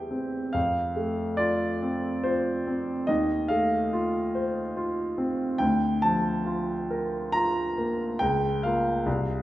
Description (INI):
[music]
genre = classical, romantic character piece for solo piano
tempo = 70 BPM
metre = 3/4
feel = rubato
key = F major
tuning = A4 = 438 Hz
[part]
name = warm grand piano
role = solo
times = 0.0-9.4 s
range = C2 to Bb5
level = -24 LUFS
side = equal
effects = none
[sound]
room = wet recital hall reverb, RT60 1.4 s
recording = none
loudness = -24 LUFS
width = side -15 dB against mid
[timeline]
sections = 0.0-9.4 A section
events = none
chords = 0.0 C/E; 0.6 F; 3.1 F7/Eb; 5.6 Bb/D; 8.2 Bbm/Db